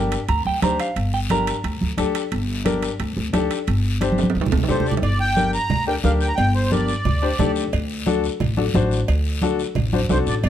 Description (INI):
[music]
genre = latin, cumbia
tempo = 177 BPM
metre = 4/4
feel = straight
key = G harmonic minor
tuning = A4 = 439 Hz
[part]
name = semi-hollow electric guitar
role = second line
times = 0.0-2.1 s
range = F5 to Bb5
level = -25 LUFS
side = right 5 dB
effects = none
[part]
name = clear upright piano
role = accompaniment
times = 0.0-10.3 s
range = D4 to C5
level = -24 LUFS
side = left 6 dB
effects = none
[part]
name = upright bass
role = bass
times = 0.0-10.5 s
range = G1 to D2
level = -22 LUFS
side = equal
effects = none
[part]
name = guiro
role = percussion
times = 0.1-10.5 s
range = none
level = -34 LUFS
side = left 6 dB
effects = none
[part]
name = timbales and cowbell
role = percussion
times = 0.1-10.5 s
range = none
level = -30 LUFS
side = right 6 dB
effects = none
[part]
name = congas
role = percussion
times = 0.5-10.3 s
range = none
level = -24 LUFS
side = right 2 dB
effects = none
[part]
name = accordion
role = melody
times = 4.7-7.5, 10.1-10.5 s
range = C5 to Bb5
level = -24 LUFS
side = right 1 dB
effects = light tremolo tuning
[sound]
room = light reverb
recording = none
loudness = -18 LUFS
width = side -10 dB against mid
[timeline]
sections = 0.0-5.0 A section; 5.0-10.5 B section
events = clean electric guitar solo 0.0-5.0; drum fill 4.0-5.0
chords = 0.0 Gm; 7.7 D7